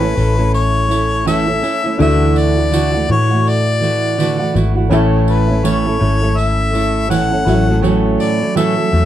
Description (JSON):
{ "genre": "acoustic pop", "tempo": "82 BPM", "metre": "4/4", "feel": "swing 60% on 16ths", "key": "A major", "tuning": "A4 = 440 Hz", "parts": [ { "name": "clear harmonica", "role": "melody", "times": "0.0-9.1 s", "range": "B4 to F#5", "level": "-18 LUFS", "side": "left 3 dB", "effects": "none" }, { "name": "felt-muted upright piano", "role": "accompaniment", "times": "0.0-9.1 s", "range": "C#4 to E5", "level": "-24 LUFS", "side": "left 4 dB", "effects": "none" }, { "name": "fingerpicked steel-string acoustic guitar", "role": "accompaniment", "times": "0.0-9.1 s", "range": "A2 to A4", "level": "-17 LUFS", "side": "right 4 dB", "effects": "none" }, { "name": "vintage muted fingered electric bass", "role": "bass", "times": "0.0-9.1 s", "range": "G#1 to A2", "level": "-16 LUFS", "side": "left 1 dB", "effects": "none" }, { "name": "tambourine", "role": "percussion", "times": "0.2-8.8 s", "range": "none", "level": "-34 LUFS", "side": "right 4 dB", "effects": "none" } ], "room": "moderate studio reverb, RT60 0.6 s", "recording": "dark, warm production", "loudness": "-12 LUFS", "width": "side -12 dB against mid", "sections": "0.0-9.1 A section", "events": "none", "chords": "0.0 A; 2.0 Dadd9; 4.9 A; 7.5 F#m7/A", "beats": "0.54 1.26 | 1.99 2.72 3.45 4.18 | 4.91 5.64 6.37 7.10 | 7.83 8.56" }